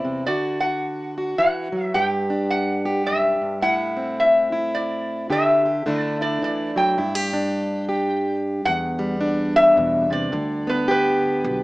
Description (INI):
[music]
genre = acoustic folk duo or small band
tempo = 107 BPM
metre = 3/4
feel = swing 61% on 8ths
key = G major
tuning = A4 = 443 Hz
[part]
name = metal-body resonator slide guitar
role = melody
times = 0.0-11.6 s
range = B4 to G5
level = -21 LUFS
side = left 1 dB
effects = none
[part]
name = fingerpicked plugged-in steel-string acoustic guitar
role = accompaniment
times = 0.0-11.6 s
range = E2 to G4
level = -22 LUFS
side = equal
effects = none
[part]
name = upright bass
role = bass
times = 8.7-11.6 s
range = B1 to E2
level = -32 LUFS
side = equal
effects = none
[sound]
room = light reverb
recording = small speaker sound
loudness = -19 LUFS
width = side -19 dB against mid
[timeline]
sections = 0.0-8.7 A section; 8.7-11.6 B section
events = none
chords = 0.3 D; 1.9 G5; 3.6 Am; 5.3 G5/D; 5.9 Dadd9; 7.0 G5; 8.7 Em7; 10.3 G/D